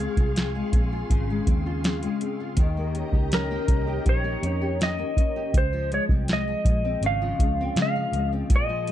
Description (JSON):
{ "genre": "indie pop, bedroom pop", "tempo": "81 BPM", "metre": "4/4", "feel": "straight", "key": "Db lydian", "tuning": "A4 = 440 Hz", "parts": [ { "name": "clean lap steel guitar", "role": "melody", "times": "0.0-8.9 s", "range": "Ab4 to F5", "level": "-28 LUFS", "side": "equal", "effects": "wide subtle chorus, tape echo, plate reverb" }, { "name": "nylon-string guitar", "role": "accompaniment", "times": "0.0-8.9 s", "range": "Bb2 to G4", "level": "-30 LUFS", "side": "left 4 dB", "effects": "ensemble chorus, vibrato effect, plate reverb" }, { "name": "soft string machine", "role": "sustained chords", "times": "0.0-5.5 s", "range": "G4 to Db6", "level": "-37 LUFS", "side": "right 2 dB", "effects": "ensemble chorus, plate reverb" }, { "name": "vintage muted fingered electric bass", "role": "bass", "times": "0.0-8.4 s", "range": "Ab1 to Db3", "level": "-28 LUFS", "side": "equal", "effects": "none" }, { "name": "soft vintage rhythm box", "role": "drums", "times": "0.0-8.9 s", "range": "hi-hat, kick drum, snare drum", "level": "-22 LUFS", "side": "equal", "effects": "overdrive" } ], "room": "light reverb", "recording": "dark, warm production", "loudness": "-22 LUFS", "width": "side -12 dB against mid", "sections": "0.0-8.9 A section", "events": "none", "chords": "0.0 Dbmaj7; 2.6 Eb7; 5.5 Dbmaj7" }